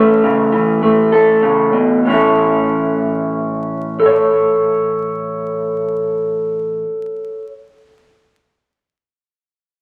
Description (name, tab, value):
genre	folk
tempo	31-36 BPM (dotted quarters)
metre	6/8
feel	straight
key	A major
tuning	A4 = 440 Hz
part	electric guitar through a small old amp	accompaniment	0.0-7.5 s	A2 to C#5	-15 LUFS	equal	none
room	wet large studio reverb, RT60 1.2 s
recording	vinyl crackle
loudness	-15 LUFS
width	mono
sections	0.0-2.1 A section; 2.1-5.9 B section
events	slowing down 0.0-2.1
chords	0.0 A/C#; 2.1 A